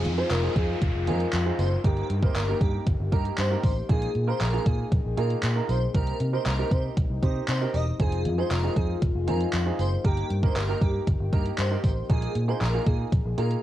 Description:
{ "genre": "dance-pop", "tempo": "117 BPM", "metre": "4/4", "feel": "straight", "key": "F minor", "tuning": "A4 = 440 Hz", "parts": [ { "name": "dark French horn section", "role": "sustained chords", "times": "0.0-13.6 s", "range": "C3 to Ab4", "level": "-34 LUFS", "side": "left 8 dB", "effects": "sidechain pumping, cassette tape" }, { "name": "vintage muted fingered electric bass", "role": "bass", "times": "0.0-13.5 s", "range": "E1 to C3", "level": "-27 LUFS", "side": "equal", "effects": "sidechain pumping" }, { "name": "gated 80s digital drum machine", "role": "drums", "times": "0.0-13.6 s", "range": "handclaps, hi-hat, kick drum", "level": "-26 LUFS", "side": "equal", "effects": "gated reverb, overdrive, cassette tape" }, { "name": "downlifter", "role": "sound effects", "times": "0.0-3.9 s", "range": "none", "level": "-40 LUFS", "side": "equal", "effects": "none" }, { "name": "airy dreamy lead", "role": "melody", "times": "0.2-13.5 s", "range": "G4 to Eb5", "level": "-33 LUFS", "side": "equal", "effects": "chorus, sidechain pumping, cassette tape, analog delay" }, { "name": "clear baby grand piano", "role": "accompaniment", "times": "0.2-13.6 s", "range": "Bb3 to C5", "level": "-33 LUFS", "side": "right 10 dB", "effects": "sidechain pumping, cassette tape" }, { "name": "tambourine", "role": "percussion", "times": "0.3-12.7 s", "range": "none", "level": "-47 LUFS", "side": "left 12 dB", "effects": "none" } ], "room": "light reverb", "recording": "home recording on cassette", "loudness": "-23 LUFS", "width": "side -13 dB against mid", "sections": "0.0-13.6 A section", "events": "none", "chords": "0.0 Fm7; 1.8 Eb/G; 3.9 Bb7sus4; 5.9 Cm7; 8.0 Fm7; 10.0 Eb/G; 12.1 Bb7sus4" }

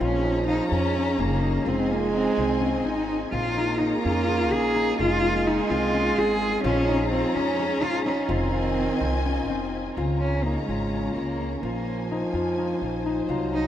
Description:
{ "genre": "contemporary instrumental, chamber music in an uneven meter", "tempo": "254 BPM (eighths)", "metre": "7/8", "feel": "straight", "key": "Bb minor", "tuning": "A4 = 441 Hz", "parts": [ { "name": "dark cello", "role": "melody", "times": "0.0-13.7 s", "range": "Ab3 to Ab4", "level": "-26 LUFS", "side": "equal", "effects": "none" }, { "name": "mellow French horn", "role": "second line", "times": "0.0-13.7 s", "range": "Db3 to Bb3", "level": "-28 LUFS", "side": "right 3 dB", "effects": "none" }, { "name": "dark symphonic string section", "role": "sustained chords", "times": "0.0-13.7 s", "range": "Db4 to Bb5", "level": "-33 LUFS", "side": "left 2 dB", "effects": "none" }, { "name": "concert harp", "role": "arpeggios", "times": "0.0-13.7 s", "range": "C4 to F4", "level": "-29 LUFS", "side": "left 4 dB", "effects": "none" }, { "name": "upright bass", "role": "bass", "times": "0.0-13.7 s", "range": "F1 to F2", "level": "-29 LUFS", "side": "equal", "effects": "none" } ], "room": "moderate huge ambient reverb, RT60 8.4 s", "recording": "in a vast, echoing space", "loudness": "-22 LUFS", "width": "side -11 dB against mid", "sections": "0.0-10.0 A section; 10.0-13.7 B section", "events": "none", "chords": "0.0 Bbm7; 1.7 Fm7; 3.3 Bbm7; 5.0 Fm7; 6.7 Bbm7; 8.3 Fm7; 10.0 Db6; 11.6 Bbm9" }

